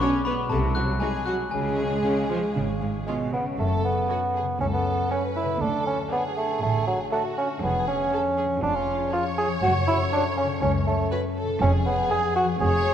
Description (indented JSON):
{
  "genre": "cinematic, playful, whimsical film cue",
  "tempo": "120 BPM",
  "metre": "4/4",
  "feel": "straight",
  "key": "F# minor",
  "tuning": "A4 = 440 Hz",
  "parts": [
    { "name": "glockenspiel with hard plastic mallets", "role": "melody", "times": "0.0-3.0 s", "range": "G#5 to Gb6", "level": "-30 LUFS", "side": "left 5 dB", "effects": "none" },
    { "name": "rich studio violin section", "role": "melody", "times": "0.0-12.5 s", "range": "Gb4 to A5", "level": "-37 LUFS", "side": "left 3 dB", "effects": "none" },
    { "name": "warm studio violin section", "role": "second line", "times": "0.0-12.9 s", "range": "C#4 to C#5", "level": "-32 LUFS", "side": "left 1 dB", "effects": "none" },
    { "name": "rich studio viola section", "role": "accompaniment", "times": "0.0-12.5 s", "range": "Gb3 to D5", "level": "-32 LUFS", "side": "right 2 dB", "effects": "none" },
    { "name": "dark French horn section", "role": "sustained chords", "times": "0.0-3.1 s", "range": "Gb3 to C#4", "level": "-30 LUFS", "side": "left 1 dB", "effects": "none" },
    { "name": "concert harp", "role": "arpeggios", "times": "0.0-12.9 s", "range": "E#2 to Eb6", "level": "-30 LUFS", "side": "left 6 dB", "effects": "none" },
    { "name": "clear studio cello section", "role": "bass", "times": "0.5-12.9 s", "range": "C#2 to E#3", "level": "-31 LUFS", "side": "right 2 dB", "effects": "none" },
    { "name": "rich studio double bass section", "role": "bass", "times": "0.5-12.9 s", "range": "E#1 to D2", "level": "-30 LUFS", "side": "right 3 dB", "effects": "none" },
    { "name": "warm bassoon", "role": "accompaniment", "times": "3.1-12.9 s", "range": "F#3 to G#4", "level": "-24 LUFS", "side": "right 2 dB", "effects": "none" }
  ],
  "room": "wet scoring stage reverb, RT60 1.9 s",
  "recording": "none",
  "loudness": "-22 LUFS",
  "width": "side -9 dB against mid",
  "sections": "0.0-3.6 A section; 3.6-12.9 B section",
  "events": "none",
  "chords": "0.0 G#m7b5/B; 0.5 Cdim; 1.5 C#; 3.6 F#m; 5.6 D; 7.6 C#/E#; 9.6 F#m; 11.6 Fdim7"
}